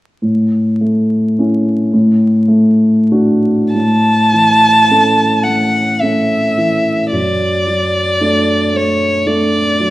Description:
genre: classical, romantic duo for violin and grand piano.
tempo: 45-58 BPM.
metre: 3/4.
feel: rubato.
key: A major.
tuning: A4 = 440 Hz.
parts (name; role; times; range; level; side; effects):
dark baby grand piano; accompaniment; 0.2-9.9 s; F#2 to A4; -12 LUFS; equal; none.
rich violin; melody; 3.7-9.9 s; C#5 to A5; -13 LUFS; equal; none.
room: wet recital hall reverb, RT60 1.5 s.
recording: vinyl crackle.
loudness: -10 LUFS.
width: side -16 dB against mid.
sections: 0.2-3.8 A section; 3.8-9.9 B section.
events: none.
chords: 0.2 A; 1.9 D/A; 3.8 A; 7.1 D/F#.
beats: | 0.22 1.38 2.50 | 3.75 4.91 6.02 | 7.13 8.22 9.27.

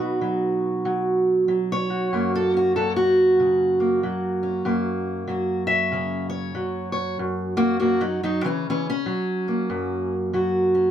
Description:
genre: acoustic country blues, solo or duo.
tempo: 95 BPM.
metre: 4/4.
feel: swing 63% on 8ths.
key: F# mixolydian.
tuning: A4 = 440 Hz.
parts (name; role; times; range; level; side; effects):
fingerpicked steel-string acoustic guitar; solo; 0.0-10.9 s; F#2 to E5; -20 LUFS; right 1 dB; none.
room: wet booth ambience, RT60 0.2 s.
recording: none.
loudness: -20 LUFS.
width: side -10 dB against mid.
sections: 0.0-7.2 A section; 7.2-10.9 B section.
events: steel-string acoustic guitar solo 7.2-10.9.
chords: 0.0 B; 2.1 F#.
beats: 0.24 0.87 1.50 | 2.13 2.76 3.40 4.03 | 4.66 5.29 5.92 6.55 | 7.18 7.81 8.44 9.07 | 9.71 10.34.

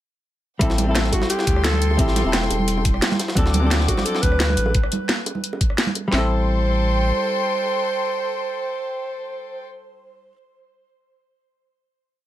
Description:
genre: liquid drum and bass.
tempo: 174 BPM.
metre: 4/4.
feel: straight.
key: A dorian.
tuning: A4 = 441 Hz.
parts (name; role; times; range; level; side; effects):
hollow-body jazz guitar; accompaniment; 0.6-10.4 s; F#3 to A4; -25 LUFS; left 1 dB; digital delay.
warm chamber string section; sustained chords; 0.6-9.6 s; C4 to D6; -28 LUFS; left 4 dB; sidechain pumping.
warm sub bass; bass; 0.6-7.1 s; E1 to D2; -21 LUFS; equal; none.
drum and bass drum kit; drums; 0.6-6.2 s; kick drum, snare drum; -21 LUFS; equal; none.
drum and bass drum kit; drums; 0.6-6.0 s; hi-hat, rim click, snare drum; -24 LUFS; equal; none.
jungle sampler-style drum kit; drums; 0.6-4.7 s; hi-hat, snare drum; -28 LUFS; equal; overdrive, high-pass filter on hats, high-pass filter on snare.
congas and bongos; percussion; 0.8-6.0 s; none; -28 LUFS; right 4 dB; none.
breathy alto saxophone; melody; 1.1-9.6 s; F#4 to C5; -26 LUFS; right 2 dB; digital delay.
room: light reverb.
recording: none.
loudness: -18 LUFS.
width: side -13 dB against mid.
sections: 0.6-6.1 drop; 6.1-8.9 final chord.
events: drop 0.6-6.1.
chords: 0.6 Am7; 3.4 D7; 6.1 Am7.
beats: | 0.61 0.95 1.30 1.64 | 1.99 2.33 2.68 3.02 | 3.37 3.71 4.06 4.40 | 4.75 5.09 5.44 5.78 | 6.13 6.47 6.82 7.16 | 7.51 7.85 8.20 8.54.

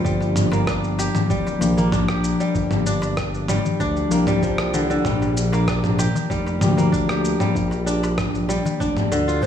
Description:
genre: organic downtempo.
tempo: 96 BPM.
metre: 4/4.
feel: straight.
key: G minor.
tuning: A4 = 441 Hz.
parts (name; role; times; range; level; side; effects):
muted felt-like synth keys; accompaniment; 0.0-9.5 s; F3 to G4; -24 LUFS; left 2 dB; chorus, sidechain pumping, tape echo, shimmer reverb.
kora; arpeggios; 0.0-9.5 s; D3 to G4; -24 LUFS; equal; tape echo, shimmer reverb.
electronic kick drum; drums; 0.0-9.5 s; none; -27 LUFS; equal; none.
smooth synth bass; bass; 0.1-9.5 s; D1 to D2; -24 LUFS; equal; none.
dusty soul sampler-style drum kit; drums; 0.1-9.5 s; rim click, shaker, toms; -26 LUFS; equal; none.
darbuka; percussion; 0.2-9.2 s; none; -29 LUFS; left 3 dB; none.
low Native American-style wooden flute; melody; 9.4-9.5 s; C5; -21 LUFS; right 1 dB; none.
room: light reverb.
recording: studio reverb.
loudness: -18 LUFS.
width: side -9 dB against mid.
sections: 0.0-9.5 A section.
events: none.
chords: 0.1 Gm7; 5.0 Bb6.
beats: | 0.05 0.68 1.30 1.93 | 2.55 3.17 3.80 4.42 | 5.05 5.67 6.30 6.92 | 7.55 8.18 8.80 9.43.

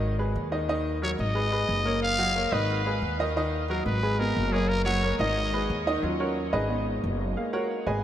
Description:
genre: latin, salsa.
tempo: 180 BPM.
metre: 4/4.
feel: straight.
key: unclear.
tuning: A4 = 439 Hz.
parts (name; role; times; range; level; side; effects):
clear baby grand piano; accompaniment; 0.0-8.0 s; Eb3 to Ab5; -28 LUFS; equal; none.
upright bass; bass; 0.0-8.0 s; Gb1 to Eb2; -29 LUFS; equal; none.
growling trumpet; melody; 1.0-5.8 s; Ab4 to F5; -30 LUFS; equal; none.
room: moderate huge ambient reverb, RT60 8.3 s.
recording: in a vast, echoing space.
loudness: -24 LUFS.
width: side -11 dB against mid.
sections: 0.0-6.0 A section; 6.0-8.0 B section.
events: grand piano solo 6.0-8.0.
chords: 0.0 Abm; 0.7 Ebm; 1.4 Abm; 2.0 Gbmaj7; 2.7 Abm; 3.4 Ebm; 4.0 Abm; 4.7 Gb; 5.4 Abm; 6.0 Ebm7; 6.7 Abm; 7.4 Gbmaj7.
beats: 0.02 0.36 | 0.69 1.02 1.36 1.69 | 2.02 2.36 2.69 3.02 | 3.36 3.69 4.03 4.36 | 4.69 5.03 5.36 5.70 | 6.03 6.37 6.70 7.03 | 7.37 7.70.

